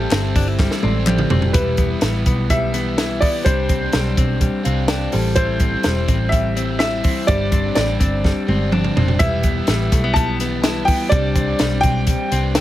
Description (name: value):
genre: jangly indie pop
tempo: 125 BPM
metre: 4/4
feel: straight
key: A minor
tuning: A4 = 442 Hz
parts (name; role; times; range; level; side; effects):
- warm upright piano; melody; 0.0-12.6 s; B4 to A5; -23 LUFS; equal; tape echo
- bright reed electric piano; accompaniment; 0.0-12.6 s; D4 to A5; -33 LUFS; right 4 dB; none
- raw garage guitar; accompaniment; 0.0-12.6 s; G2 to E4; -28 LUFS; right 8 dB; overdrive
- direct-recorded clean electric guitar; arpeggios; 0.0-12.6 s; G3 to E4; -23 LUFS; left 6 dB; none
- vintage muted picked electric bass; bass; 0.0-12.6 s; E1 to C2; -21 LUFS; equal; none
- compact cocktail drum kit; drums; 0.1-12.6 s; hi-hat, kick drum, snare drum, toms; -19 LUFS; equal; none
- group handclap; percussion; 0.1-1.2 s; none; -27 LUFS; left 5 dB; none
room: light reverb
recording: none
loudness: -16 LUFS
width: side -14 dB against mid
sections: 0.0-1.6 A section; 1.6-12.6 B section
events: drum fill 0.6-1.6, 8.2-9.2; reed electric piano fill 4.4-5.4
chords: 0.0 Am7; 1.6 Em; 3.5 Csus2; 5.1 Am7; 7.3 Gsus4; 9.2 Em; 11.1 Csus2